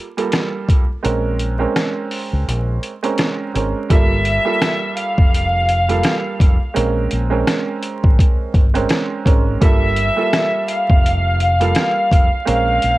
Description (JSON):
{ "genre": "hip hop, boom-bap hip-hop", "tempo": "84 BPM", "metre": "4/4", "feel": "swing 57% on 16ths", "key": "G dorian", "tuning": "A4 = 443 Hz", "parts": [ { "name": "clear upright piano", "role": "accompaniment", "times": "0.0-13.0 s", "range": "G3 to Bb4", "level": "-22 LUFS", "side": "right 4 dB", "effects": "cassette tape, high-pass filter, low-pass filter" }, { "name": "boom bap sampler-style drum kit", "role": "drums", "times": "0.2-13.0 s", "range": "hi-hat, kick drum, rim click, snare drum", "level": "-16 LUFS", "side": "equal", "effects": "cassette tape" }, { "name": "deep dub fingered electric bass", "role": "bass", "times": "1.1-13.0 s", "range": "F1 to Db2", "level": "-20 LUFS", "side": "equal", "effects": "none" }, { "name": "warm chamber violin section", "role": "melody", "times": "3.9-13.0 s", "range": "E5 to F5", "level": "-18 LUFS", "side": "equal", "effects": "high-pass filter, low-pass filter, cassette tape, analog delay" } ], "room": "small room ambience", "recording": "home recording on cassette, vinyl crackle", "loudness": "-14 LUFS", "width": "side -18 dB against mid", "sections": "0.0-3.9 A section; 3.9-13.0 B section", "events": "kick muted 1.0-3.9", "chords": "0.0 Gm9; 1.0 Bbm9; 3.9 Gm9; 6.8 Bbm9; 9.6 Gm9; 12.5 Bbm9", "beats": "0.33 | 1.05 1.76 2.47 3.19 | 3.90 4.62 5.33 6.05 | 6.76 7.47 8.19 8.90 | 9.62 10.33 11.05 11.76 | 12.47" }